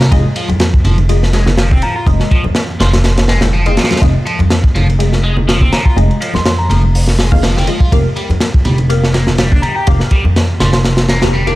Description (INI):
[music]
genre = breakbeat, breaks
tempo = 123 BPM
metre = 4/4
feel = swing 54% on 16ths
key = F minor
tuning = A4 = 440 Hz
[part]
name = biting overdriven guitar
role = riff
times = 0.0-11.6 s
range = F3 to Bb4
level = -21 LUFS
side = equal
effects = tube saturation, phaser, digital delay
[part]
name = upright bass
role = bass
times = 0.0-11.5 s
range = F1 to F2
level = -13 LUFS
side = equal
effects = none
[part]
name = crunchy breakbeat drum kit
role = drums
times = 0.0-11.6 s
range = hi-hat, kick drum, ride cymbal, snare drum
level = -13 LUFS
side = equal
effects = none
[part]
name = filtered dub chord stab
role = stabs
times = 0.1-11.6 s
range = Ab3 to Bb5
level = -22 LUFS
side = left 3 dB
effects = phaser, wide subtle chorus, cassette tape, digital delay
[part]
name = congas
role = percussion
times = 0.5-11.6 s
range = none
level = -22 LUFS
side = equal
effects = none
[part]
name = soft synth bell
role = melody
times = 1.8-10.8 s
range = Bb5 to C6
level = -24 LUFS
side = left 1 dB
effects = chorus, AM radio sound, digital delay
[sound]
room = studio ambience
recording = dark, warm production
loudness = -10 LUFS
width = side -17 dB against mid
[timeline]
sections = 0.0-11.6 A section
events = none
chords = 0.1 Fm7; 7.9 Gm7/F